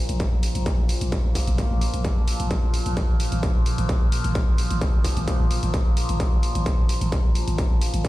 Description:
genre	driving peak-time techno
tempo	130 BPM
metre	4/4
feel	straight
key	unclear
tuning	A4 = 440 Hz
part	overtone-sweeping drone	drone	0.0-8.1 s	Bb2 to F3	-30 LUFS	equal	chorus, built-in reverb, phaser, sidechain pumping
part	growling 808-style bass	bass	0.1-8.0 s	Ab1 to Bb1	-25 LUFS	equal	tube saturation, sidechain pumping, low-pass filter
part	electronic hi-hat	drums	0.1-8.1 s	none	-34 LUFS	equal	none
part	electronic kick drum	drums	0.2-8.1 s	none	-21 LUFS	equal	distortion
room	little or no reverb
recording	played on a big sound system in a bare room, stone room reverb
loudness	-20 LUFS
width	side -17 dB against mid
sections	0.0-8.1 A section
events	none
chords	0.0 Bb5; 3.0 Fmadd11/Ab

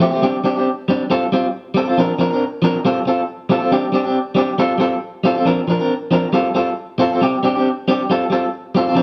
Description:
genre	highlife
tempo	137 BPM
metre	4/4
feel	straight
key	F major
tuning	A4 = 440 Hz
part	electric guitar at the edge of break-up	solo	0.0-9.0 s	F3 to Bb4	-18 LUFS	equal	tremolo
room	moderate large studio reverb, RT60 1.1 s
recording	band playing live in one room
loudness	-18 LUFS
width	mono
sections	0.0-9.0 A section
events	none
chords	0.2 Csus2; 1.1 Fadd9; 2.0 Bbadd9; 2.8 Fadd9; 3.7 Csus2; 4.6 Fadd9; 5.5 Bbadd9; 6.3 Fadd9; 7.2 Csus2; 8.1 Fadd9

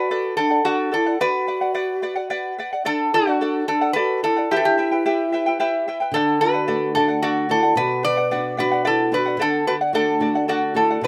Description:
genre	andean folk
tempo	73 BPM (dotted quarters)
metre	6/8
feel	straight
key	unclear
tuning	A4 = 445 Hz
part	metal-body resonator slide guitar	melody	0.0-11.1 s	F#4 to D5	-23 LUFS	equal	none
part	mellow hollow large quena	second line	0.0-11.1 s	D4 to B4	-27 LUFS	equal	none
part	charango	accompaniment	0.0-11.1 s	E4 to G5	-26 LUFS	equal	none
part	nylon-string guitar	accompaniment	6.1-11.1 s	B2 to F#4	-31 LUFS	equal	none
room	light reverb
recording	none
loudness	-20 LUFS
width	mono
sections	0.0-11.1 A section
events	none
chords	0.0 D; 1.2 Bm; 2.9 D; 4.5 Em; 6.1 D; 7.8 Bm; 9.4 D

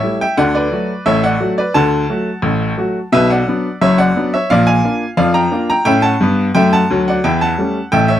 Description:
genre	ragtime piano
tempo	88 BPM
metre	2/4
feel	straight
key	D major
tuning	A4 = 439 Hz
part	bright upright piano	solo	0.0-8.2 s	F#1 to Bb5	-12 LUFS	equal	none
room	light reverb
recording	dry, close 1970s-style studio recording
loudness	-12 LUFS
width	side -11 dB against mid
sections	0.0-8.2 A section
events	none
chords	0.4 D; 3.1 Bm; 4.5 Bb; 5.9 A7; 7.2 A7/E

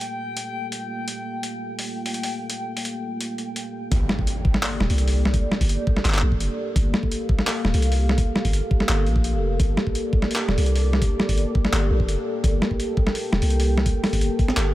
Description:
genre	half-time drum and bass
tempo	169 BPM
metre	4/4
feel	half-time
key	G minor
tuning	A4 = 440 Hz
part	dark analog pad	sustained chords	0.0-14.7 s	Bb3 to G5	-28 LUFS	equal	chorus, sidechain pumping
part	boom bap sampler-style drum kit	drums	0.0-14.6 s	handclaps, hi-hat, snare drum	-26 LUFS	equal	overdrive, small room ambience
part	backwards swelling texture	texture	0.0-3.9 s	G5	-34 LUFS	left 2 dB	built-in reverb
part	long sustained 808-style bass	bass	3.9-14.7 s	D1 to C2	-21 LUFS	equal	tube saturation
part	electronic kick drum	drums	3.9-14.5 s	none	-22 LUFS	equal	small room ambience
part	impact	sound effects	3.9-5.3 s	none	-32 LUFS	equal	none
room	light reverb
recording	none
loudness	-20 LUFS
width	side -15 dB against mid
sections	0.0-3.9 A section; 3.9-14.7 B section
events	filter sweep on analog synth pad 0.0-3.9; drop 3.9-14.7; impact 3.9-5.3; kick drops out 14.6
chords	0.0 Gmadd9

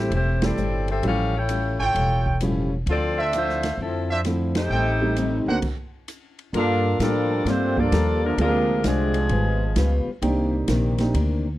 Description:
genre	jazz, big band swing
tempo	130 BPM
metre	4/4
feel	swing 66% on 8ths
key	G minor from 6.5 s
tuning	A4 = 444 Hz
part	warm saxophone section	melody	0.0-10.1 s	F3 to G5	-26 LUFS	left 3 dB	none
part	warm upright piano	accompaniment	0.0-11.1 s	D3 to A4	-26 LUFS	right 2 dB	none
part	upright bass	bass	0.0-11.6 s	E1 to A2	-24 LUFS	equal	none
part	picked steel-string acoustic guitar	accompaniment	0.1-11.5 s	A2 to A4	-29 LUFS	left 4 dB	none
part	open jazz drum kit	drums	0.1-11.3 s	crash cymbal, hi-hat, kick drum, ride cymbal, snare drum	-29 LUFS	right 1 dB	none
part	warm trumpet section	stabs	1.8-5.6 s	D4 to G5	-24 LUFS	right 2 dB	none
part	bright trombone section	second line	6.5-10.1 s	C3 to F4	-25 LUFS	right 3 dB	none
room	studio reverb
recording	dry, close 1970s-style studio recording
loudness	-20 LUFS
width	side -15 dB against mid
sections	0.0-6.5 A section; 6.5-11.6 B section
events	band accent 0.3, 4.5; stop 5.6-6.5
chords	0.0 Am7; 1.0 A7b13; 2.9 Dm9; 4.7 Am7b5; 5.6 N.C.; 6.5 Gm9; 8.4 Dm7b5; 9.3 C#7#11; 10.2 Cm9

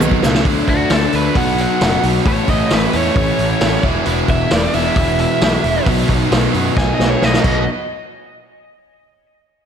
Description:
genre	classic rock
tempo	133 BPM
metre	4/4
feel	straight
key	B mixolydian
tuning	A4 = 439 Hz
part	biting overdriven guitar	riff	0.0-7.6 s	A2 to E4	-20 LUFS	right 10 dB	slapback echo
part	sludgy distorted guitar	riff	0.0-7.6 s	E2 to D4	-20 LUFS	left 9 dB	overdrive, slapback echo
part	fuzz picked electric bass	bass	0.0-7.7 s	E1 to F#2	-20 LUFS	equal	overdrive
part	vintage drum kit	drums	0.0-7.5 s	crash cymbal, hi-hat, kick drum, snare drum, toms	-18 LUFS	equal	none
part	biting lead guitar	melody	0.7-7.7 s	F#4 to G#5	-21 LUFS	equal	overdrive, slapback echo, tape echo
room	moderate lush hall reverb, RT60 1.7 s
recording	big arena sound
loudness	-13 LUFS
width	side -8 dB against mid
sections	0.5-7.7 A section; 7.7-9.5 B section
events	drum fill 0.0-0.5, 6.8-7.7; lead electric guitar solo 0.5-7.7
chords	0.5 D; 1.4 B; 2.3 A; 3.8 E; 5.9 B; 7.7 N.C.

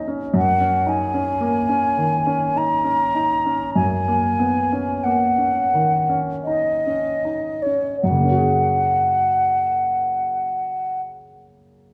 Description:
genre	classical, impressionist duo for flute and grand piano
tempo	37-56 BPM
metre	3/4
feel	rubato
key	F# major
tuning	A4 = 444 Hz
part	mellow concert flute	melody	0.0-11.0 s	C#5 to A#5	-22 LUFS	equal	none
part	clear concert grand piano	accompaniment	0.0-11.9 s	F#2 to G#4	-25 LUFS	equal	none
room	wet recital hall reverb, RT60 1.4 s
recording	none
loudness	-20 LUFS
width	mono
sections	0.0-8.0 A section; 8.0-11.9 B section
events	slowing down 0.0-8.0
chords	0.0 F#6; 8.0 F#add9

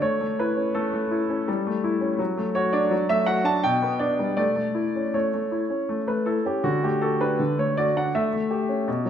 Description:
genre	classical-period piano sonatina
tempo	81 BPM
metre	3/4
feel	rubato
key	unclear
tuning	A4 = 440 Hz
part	clear grand piano	solo	0.0-9.1 s	B2 to A5	-22 LUFS	equal	none
room	wet recital hall reverb, RT60 1.6 s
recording	minimal, uncompressed stereo recording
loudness	-22 LUFS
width	side -9 dB against mid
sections	0.0-9.1 A section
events	none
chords	0.0 A; 1.5 A7/G; 2.2 D/F#; 3.7 G/B; 4.4 A; 6.7 D; 8.1 A7

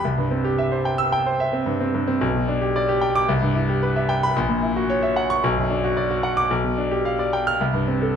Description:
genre	classical, virtuoso piano study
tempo	111 BPM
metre	4/4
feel	rubato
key	unclear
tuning	A4 = 440 Hz
part	clear concert grand piano	solo	0.0-8.2 s	A#1 to F6	-19 LUFS	equal	none
room	moderate recital hall reverb, RT60 1.5 s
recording	dark, warm production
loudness	-19 LUFS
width	side -8 dB against mid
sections	0.0-8.2 A section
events	none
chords	0.0 C; 2.2 G/B; 3.3 Cmaj7; 4.4 F#7/A#; 5.4 Bm; 6.5 G7/B; 7.6 C5

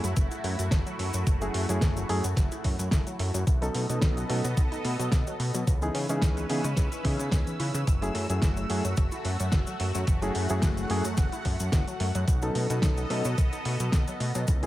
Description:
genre	nu-disco, nu disco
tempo	109 BPM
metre	4/4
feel	swing 54% on 16ths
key	F# dorian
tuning	A4 = 442 Hz
part	reed electric piano	accompaniment	0.0-14.7 s	E3 to A4	-33 LUFS	equal	fast tremolo, dub echo
part	lush unison pad	sustained chords	0.0-14.7 s	A3 to E6	-35 LUFS	equal	chorus, phaser, sidechain pumping
part	wide unison pluck	arpeggios	0.0-14.7 s	D#3 to G#4	-38 LUFS	left 1 dB	sidechain pumping, dub echo
part	fat analog bass	bass	0.0-14.7 s	F#1 to C#3	-30 LUFS	equal	none
part	pop drum kit	drums	0.0-14.7 s	hi-hat, snare drum	-34 LUFS	equal	none
part	cabasa	percussion	0.0-14.7 s	none	-40 LUFS	left 3 dB	none
part	electronic kick drum	drums	0.2-14.6 s	none	-25 LUFS	equal	none
room	little or no reverb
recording	none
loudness	-25 LUFS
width	side -15 dB against mid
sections	0.0-14.7 A section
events	none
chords	0.0 F#m7; 3.5 B7; 5.7 C#m7; 7.9 F#m7; 12.3 B7

